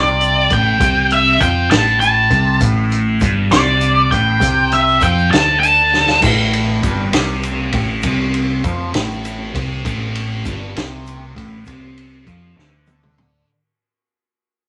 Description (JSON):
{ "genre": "psychedelic rock", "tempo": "66 BPM (dotted quarters)", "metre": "6/8", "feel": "straight", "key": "A minor", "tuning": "A4 = 440 Hz", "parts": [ { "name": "octave-fuzz lead guitar", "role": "melody", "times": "0.0-6.2 s", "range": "D5 to A5", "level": "-15 LUFS", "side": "equal", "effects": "wah, distortion" }, { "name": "thick fuzz guitar", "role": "riff", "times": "0.0-13.5 s", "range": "G2 to F3", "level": "-23 LUFS", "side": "equal", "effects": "distortion, phaser" }, { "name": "deep dub picked electric bass", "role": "bass", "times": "0.0-13.4 s", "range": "G1 to F2", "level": "-23 LUFS", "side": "equal", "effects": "none" }, { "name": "tube shaker", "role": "percussion", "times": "0.1-13.0 s", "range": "none", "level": "-44 LUFS", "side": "equal", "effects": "none" }, { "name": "vintage drum kit", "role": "drums", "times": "0.2-13.3 s", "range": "crash cymbal, hi-hat, kick drum, ride cymbal, snare drum, toms", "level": "-22 LUFS", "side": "equal", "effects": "none" } ], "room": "moderate studio reverb, RT60 0.5 s", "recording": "none", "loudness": "-15 LUFS", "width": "mono", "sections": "0.0-6.2 A section; 6.2-13.5 B section", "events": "lead electric guitar solo 0.0-6.2; drum fill 5.9-6.2, 12.6-13.5; fade-out 6.2-13.5", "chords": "0.0 Am", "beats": "| 0.81 1.71 | 2.62 3.52 | 4.42 5.33 | 6.23 7.14 | 8.04 8.95 | 9.85 10.76 | 11.66 12.57" }